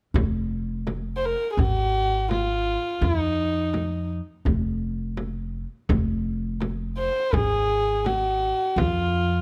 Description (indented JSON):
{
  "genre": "Persian modal ensemble",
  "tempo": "84 BPM",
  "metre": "4/4",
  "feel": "straight",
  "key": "F dastgah shur",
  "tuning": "A4 = 440 Hz",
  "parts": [
    { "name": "upright bass", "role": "bass", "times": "0.1-9.4 s", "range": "F1 to F2", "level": "-29 LUFS", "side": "equal", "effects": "none" },
    { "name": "tombak", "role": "percussion", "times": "0.1-9.2 s", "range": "none", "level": "-32 LUFS", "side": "equal", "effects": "none" },
    { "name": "frame drum", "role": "percussion", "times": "0.2-8.9 s", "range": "none", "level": "-30 LUFS", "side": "equal", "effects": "none" },
    { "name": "dark kamancheh", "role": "melody", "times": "1.2-9.4 s", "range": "Eb4 to C5", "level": "-26 LUFS", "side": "equal", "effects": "none" }
  ],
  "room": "little or no reverb",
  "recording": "close, detailed microphones",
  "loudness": "-25 LUFS",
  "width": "mono",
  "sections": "0.2-9.4 A section",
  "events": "none",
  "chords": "none"
}